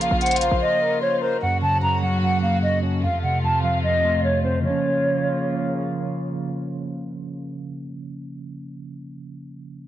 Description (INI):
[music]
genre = hip hop, trap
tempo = 149 BPM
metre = 4/4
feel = half-time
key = Bb harmonic minor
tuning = A4 = 440 Hz
[part]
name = breathy mellow silver concert flute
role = melody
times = 0.0-5.8 s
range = C5 to Bb5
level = -23 LUFS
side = equal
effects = low-pass filter, digital delay
[part]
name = warm studio string section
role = sustained chords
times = 0.0-7.6 s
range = C3 to Gb4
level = -29 LUFS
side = right 1 dB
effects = none
[part]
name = short 808-style bass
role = bass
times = 0.0-0.6 s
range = Bb1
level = -25 LUFS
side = equal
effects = none
[part]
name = electronic hi-hat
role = drums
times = 0.0-0.5 s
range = none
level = -28 LUFS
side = right 1 dB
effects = overdrive, vintage 12-bit sampler grit
[part]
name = breathy flute-like synth lead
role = second line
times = 0.2-1.4 s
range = Bb4 to C5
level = -28 LUFS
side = left 7 dB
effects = chorus, digital delay
[part]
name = mellow tine electric piano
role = accompaniment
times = 1.4-9.9 s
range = F2 to Db4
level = -24 LUFS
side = right 1 dB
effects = slow stereo tremolo, low-pass filter
[sound]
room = light reverb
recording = low-pass filter, nothing above 10.5 kHz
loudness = -19 LUFS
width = side -12 dB against mid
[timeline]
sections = 0.0-1.4 A section; 1.4-4.6 B section; 4.6-7.9 C section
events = drums muted 0.6-1.4; filter sweep 1.4-4.6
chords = 0.0 Bbm; 1.4 Gb; 3.0 F; 4.6 Bbm